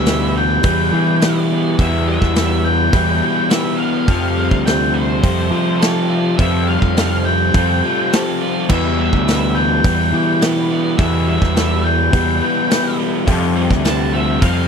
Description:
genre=classic rock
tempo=104 BPM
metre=4/4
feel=straight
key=unclear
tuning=A4 = 439 Hz
part: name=octave-fuzz lead guitar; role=melody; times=0.0-14.7 s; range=C5 to A5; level=-21 LUFS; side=equal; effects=distortion
part: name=fingerpicked twelve-string acoustic guitar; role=accompaniment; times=0.0-14.7 s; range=E2 to G4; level=-28 LUFS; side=right 2 dB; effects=lush chorus
part: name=tonewheel organ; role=sustained chords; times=0.0-14.7 s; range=G3 to B4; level=-31 LUFS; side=right 2 dB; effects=none
part: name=crunchy overdriven guitar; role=riff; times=0.0-14.7 s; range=E2 to F3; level=-21 LUFS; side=left 18 dB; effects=none
part: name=raw garage guitar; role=riff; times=0.0-14.7 s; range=E3 to A4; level=-22 LUFS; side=right 18 dB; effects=overdrive
part: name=growling fingered electric bass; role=bass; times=0.0-14.7 s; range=D2 to F3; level=-18 LUFS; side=right 1 dB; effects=overdrive
part: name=bright upright piano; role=accompaniment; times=0.1-14.7 s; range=E4 to C5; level=-30 LUFS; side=right 3 dB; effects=none
part: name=big rock drum kit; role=drums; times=0.1-14.6 s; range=crash cymbal, hi-hat, kick drum, snare drum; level=-20 LUFS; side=equal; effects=none
room=little or no reverb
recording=dry, close 1970s-style studio recording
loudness=-13 LUFS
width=side -6 dB against mid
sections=0.0-14.7 A section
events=none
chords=0.0 Em; 4.1 Fadd9; 8.7 Em; 13.3 Fadd9

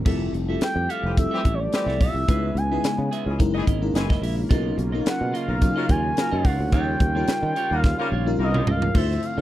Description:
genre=polished 1980s jazz-funk pop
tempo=108 BPM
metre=4/4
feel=swing 54% on 16ths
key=unclear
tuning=A4 = 439 Hz
part: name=FM electric piano with soft pad layer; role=accompaniment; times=0.0-9.4 s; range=F#3 to C5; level=-28 LUFS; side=left 3 dB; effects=wide subtle chorus
part: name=sustaining fretless electric bass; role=bass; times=0.0-9.4 s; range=F1 to Eb3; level=-25 LUFS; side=equal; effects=none
part: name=warm analog pad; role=sustained chords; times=0.1-9.4 s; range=C#3 to G4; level=-32 LUFS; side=equal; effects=chorus
part: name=clean electric guitar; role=riff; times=0.1-9.4 s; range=E4 to F5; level=-34 LUFS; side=right 7 dB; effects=wide subtle chorus
part: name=crisp fusion drum kit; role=drums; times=0.1-9.4 s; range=crash cymbal, hi-hat, kick drum, snare drum, toms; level=-22 LUFS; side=equal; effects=none
part: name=expressive portamento lead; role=melody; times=0.6-9.4 s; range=C#5 to G#5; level=-27 LUFS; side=equal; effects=chorus, slapback echo
part: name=dark horn section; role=second line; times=1.0-8.6 s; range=E3 to A#4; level=-30 LUFS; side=left 2 dB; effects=none
room=little or no reverb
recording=dry, close 1970s-style studio recording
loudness=-20 LUFS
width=side -14 dB against mid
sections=0.1-8.9 A section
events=drum fill 7.8-8.9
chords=0.1 Fmaj9; 2.3 C#m7; 3.4 F#13; 4.5 Bmaj9#11; 6.7 Eb9

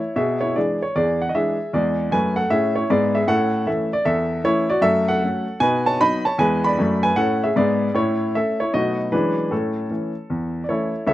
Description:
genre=jazz, stride piano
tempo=154 BPM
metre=4/4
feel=swing 64% on 8ths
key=A major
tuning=A4 = 442 Hz
part: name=warm grand piano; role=solo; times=0.0-11.1 s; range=C#2 to B5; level=-18 LUFS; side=equal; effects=none
room=light reverb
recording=recorded outdoors, with no room sound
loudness=-18 LUFS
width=side -15 dB against mid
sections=0.0-11.1 A section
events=none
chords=0.2 E7/B; 1.7 E7; 3.3 A; 4.8 F#m; 5.6 B; 6.4 E7; 8.0 A; 8.7 B7; 9.1 E13; 9.5 A

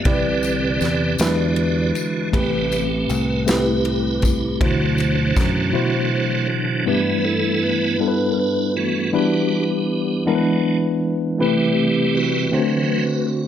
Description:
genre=slow gospel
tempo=53 BPM (dotted quarters)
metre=6/8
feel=straight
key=G major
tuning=A4 = 441 Hz
part: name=mellow tine electric piano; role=accompaniment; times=0.0-13.5 s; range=G2 to D5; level=-20 LUFS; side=left 2 dB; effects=medium stereo tremolo
part: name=tonewheel organ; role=sustained chords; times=0.0-13.5 s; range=C3 to D5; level=-22 LUFS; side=right 3 dB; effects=slow rotary speaker, chorus vibrato
part: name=fingered electric bass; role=bass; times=0.1-5.7 s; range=A1 to F#2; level=-24 LUFS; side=equal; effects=none
part: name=modern studio drum kit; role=drums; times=0.1-5.5 s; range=kick drum, ride cymbal, snare drum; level=-22 LUFS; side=equal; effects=none
part: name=tambourine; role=percussion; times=0.4-5.7 s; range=none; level=-34 LUFS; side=left 8 dB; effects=none
room=moderate large studio reverb, RT60 1.3 s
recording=none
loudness=-17 LUFS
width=side -10 dB against mid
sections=0.0-6.9 A section; 6.9-13.5 A section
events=tonewheel organ solo 0.0-6.9, 6.9-13.5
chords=0.1 Cmaj9; 1.2 E7; 2.3 Am9; 4.6 D13; 6.9 G6; 9.1 Em7; 10.3 E7; 11.4 Am9; 12.5 D7

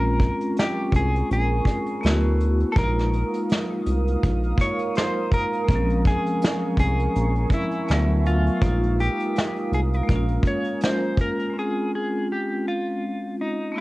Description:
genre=lo-fi hip hop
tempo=82 BPM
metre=4/4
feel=swing 55% on 16ths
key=unclear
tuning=A4 = 443 Hz
part: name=clean electric guitar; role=melody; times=0.0-13.8 s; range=Eb4 to Db5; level=-28 LUFS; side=equal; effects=harmonic tremolo, cassette tape
part: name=vibraphone with hard mallets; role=accompaniment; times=0.0-13.8 s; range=F3 to E5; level=-26 LUFS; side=left 1 dB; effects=cassette tape
part: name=deep dark ambient pad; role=sustained chords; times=0.7-11.5 s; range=Bb4 to Eb6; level=-33 LUFS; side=right 5 dB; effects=chorus, built-in reverb, cassette tape
part: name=round analog bass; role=bass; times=0.0-10.4 s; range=Bb1 to D2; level=-22 LUFS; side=equal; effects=none
part: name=vintage brush drum kit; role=drums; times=0.2-11.5 s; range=hi-hat, kick drum, snare drum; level=-24 LUFS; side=equal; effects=cassette tape
room=light reverb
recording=home recording on cassette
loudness=-20 LUFS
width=side -19 dB against mid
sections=0.0-11.5 A section; 11.5-13.8 B section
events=none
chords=0.0 Bbm9; 2.0 D69; 2.8 Bb9sus4; 5.7 Bbm9; 7.9 D69; 8.6 Bb13sus4; 10.1 Bbm7; 11.5 Dbmaj7/Ab

